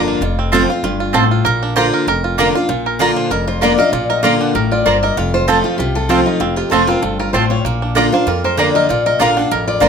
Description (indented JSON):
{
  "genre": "bluegrass",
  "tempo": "194 BPM",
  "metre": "4/4",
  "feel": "swing 55% on 8ths",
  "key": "Bb major",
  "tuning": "A4 = 442 Hz",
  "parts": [
    { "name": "bluegrass banjo", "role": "melody", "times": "0.0-9.9 s", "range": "Bb3 to C5", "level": "-20 LUFS", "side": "right 5 dB", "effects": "none" },
    { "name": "picked steel-string acoustic guitar", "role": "accompaniment", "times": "0.0-9.9 s", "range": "F2 to F4", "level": "-17 LUFS", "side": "left 2 dB", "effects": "none" },
    { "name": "upright bass", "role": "bass", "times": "0.0-9.9 s", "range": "F1 to F2", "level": "-22 LUFS", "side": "left 1 dB", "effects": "none" },
    { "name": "mandolin", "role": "stabs", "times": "0.5-9.9 s", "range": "Bb3 to Bb5", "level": "-16 LUFS", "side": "right 4 dB", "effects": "none" },
    { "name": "picked steel-string acoustic guitar", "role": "melody", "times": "3.2-9.9 s", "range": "Eb4 to Gb5", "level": "-18 LUFS", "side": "left 3 dB", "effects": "none" }
  ],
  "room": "moderate small room reverb, RT60 0.5 s",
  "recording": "none",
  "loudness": "-13 LUFS",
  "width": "side -6 dB against mid",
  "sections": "0.0-2.7 A section; 2.7-9.9 B section",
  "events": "five-string banjo solo 0.0-2.7",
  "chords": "0.2 F; 1.5 Bb; 5.2 F; 7.6 Bb",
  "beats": "| 0.22 0.53 0.83 1.15 | 1.45 1.76 2.07 2.38 | 2.69 3.00 3.31 3.62 | 3.93 4.24 4.55 4.86 | 5.17 5.48 5.79 6.10 | 6.41 6.72 7.03 7.34 | 7.64 7.96 8.27 8.57 | 8.88 9.20 9.51 9.82"
}